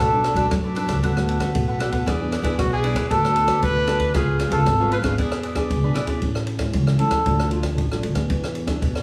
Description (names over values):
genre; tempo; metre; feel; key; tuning
samba and choro; 116 BPM; 4/4; straight; unclear; A4 = 441 Hz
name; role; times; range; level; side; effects
breathy trumpet; melody; 0.0-7.6 s; F4 to B4; -24 LUFS; equal; plate reverb
cavaquinho; accompaniment; 0.0-6.2 s; D4 to F#5; -31 LUFS; equal; none
nylon-string guitar; accompaniment; 0.0-9.0 s; G#2 to A4; -29 LUFS; equal; none
upright bass; bass; 0.0-9.0 s; G#1 to F#2; -26 LUFS; equal; none
open jazz drum kit; drums; 0.2-9.0 s; kick drum, ride cymbal, rim click; -29 LUFS; equal; none
room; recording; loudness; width
moderate studio reverb, RT60 0.8 s; small room ambience; -21 LUFS; mono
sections
0.0-6.2 A section; 6.2-9.0 B section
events
trumpet solo 6.2-9.0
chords
0.0 Bm7; 1.0 D6; 2.1 E7; 3.1 Bm7/D; 4.1 C#7; 5.2 E7; 6.2 Amaj7; 7.3 Dm; 8.3 E7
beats
0.51 1.03 1.54 | 2.06 2.58 3.10 3.62 | 4.14 4.66 5.18 5.70 | 6.22 6.74 7.26 7.78 | 8.30 8.82